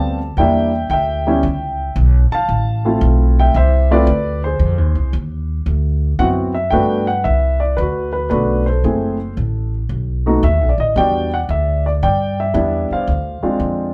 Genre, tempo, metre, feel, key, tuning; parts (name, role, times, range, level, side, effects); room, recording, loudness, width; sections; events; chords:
jazz piano trio; 114 BPM; 4/4; swing 68% on 8ths; G major from 6.7 s; A4 = 440 Hz
warm baby grand piano; melody; 0.0-13.9 s; G3 to A5; -19 LUFS; equal
upright bass; bass; 0.0-13.9 s; F#1 to G2; -19 LUFS; equal
moderate studio reverb, RT60 0.8 s; band playing live in one room; -17 LUFS; mono
0.0-6.7 A section; 6.7-13.9 B section
0.4 Em7b5; 1.4 A9 (rootless); 2.5 Dm7; 4.6 Fm7; 5.7 D13; 6.7 Gmaj9; 8.8 F#m7b5; 9.9 B7; 11.0 Em7; 13.1 Dm7b5